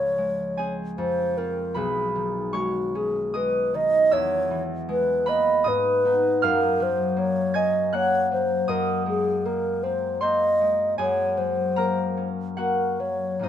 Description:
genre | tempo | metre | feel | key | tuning
classical, impressionist duo for alto flute and harp | 65-81 BPM | 3/4 | rubato | unclear | A4 = 441 Hz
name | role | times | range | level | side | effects
wooden-headed alto flute | melody | 0.0-13.5 s | F#4 to D#5 | -23 LUFS | equal | none
concert harp | accompaniment | 0.0-13.5 s | B1 to Ab6 | -26 LUFS | left 1 dB | none
room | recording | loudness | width
light reverb | minimal, uncompressed stereo recording | -21 LUFS | side -10 dB against mid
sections
0.0-13.5 A section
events
none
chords
0.0 Dbmaj7; 1.0 Fm; 1.8 B69; 4.1 Emaj7#11; 5.7 Abmadd9; 6.4 Gbmaj7; 8.7 Ab13/Gb; 11.0 Gbadd9

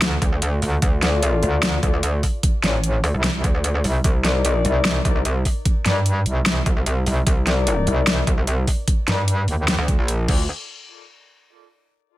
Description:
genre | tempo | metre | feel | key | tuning
heavy wobble dubstep | 149 BPM | 4/4 | half-time | unclear | A4 = 436 Hz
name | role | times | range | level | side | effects
metallic wobble bass | bass | 0.0-9.8 s | A1 to G2 | -20 LUFS | equal | chorus, overdrive
big-room dance drum kit | drums | 0.0-10.4 s | crash cymbal, hi-hat, snare drum | -23 LUFS | equal | overdrive
metallic wobble bass | bass | 0.2-10.5 s | Bb1 to D2 | -21 LUFS | equal | chorus, overdrive
electronic kick drum | drums | 0.2-10.4 s | none | -20 LUFS | equal | overdrive
mellow brass ensemble | stabs | 1.0-10.4 s | Eb4 to D5 | -27 LUFS | left 5 dB | ping-pong delay
room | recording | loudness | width
digital ambience | none | -17 LUFS | side -16 dB against mid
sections
0.0-10.5 A section; 10.5-12.1 B section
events
drop 0.0-10.5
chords
0.0 Dm; 4.0 Cm7; 10.3 Dm; 10.5 N.C.

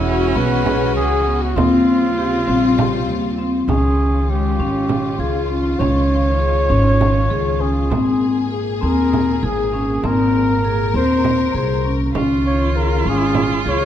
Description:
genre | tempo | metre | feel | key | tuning
contemporary instrumental, chamber music in an uneven meter | 198 BPM (eighths) | 7/8 | straight | Db lydian | A4 = 438 Hz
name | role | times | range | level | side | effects
mellow flugelhorn | melody | 0.0-13.8 s | Fb4 to Db5 | -22 LUFS | right 1 dB | none
clear cello | second line | 0.0-3.4, 12.1-13.8 s | C4 to F4 | -25 LUFS | right 7 dB | none
warm studio string section | sustained chords | 0.0-13.8 s | Bb2 to Bb4 | -25 LUFS | left 4 dB | none
upright bass | bass | 0.0-13.8 s | E1 to Eb2 | -20 LUFS | right 1 dB | none
vibraphone with medium mallets | arpeggios | 0.1-13.8 s | Ab3 to G#4 | -19 LUFS | left 2 dB | none
frame drum | percussion | 0.1-13.6 s | none | -25 LUFS | right 6 dB | none
room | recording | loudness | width
light reverb | dark, warm production | -15 LUFS | side -10 dB against mid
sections
0.0-3.7 A section; 3.7-13.8 B section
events
none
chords
0.0 Eadd9; 1.6 Eb13; 3.7 Dbadd9; 7.9 Abadd9; 12.1 Dbadd9

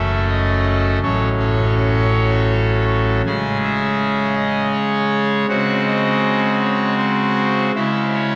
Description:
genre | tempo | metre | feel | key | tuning
classical, chorale-style piece for pipe organ | 80 BPM | 3/4 | rubato | C# minor | A4 = 440 Hz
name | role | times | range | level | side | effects
pipe organ, trumpet | solo | 0.0-8.4 s | F#1 to G#5 | -18 LUFS | equal | none
room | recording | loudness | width
wet cathedral reverb, RT60 4.4 s | worn, warbling old tape, cassette tape, warbly pitch drift | -18 LUFS | mono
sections
0.0-8.4 A section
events
none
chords
0.0 F#m; 1.0 F#m/A; 3.3 C#m; 5.5 G#7/C#; 7.8 C#m

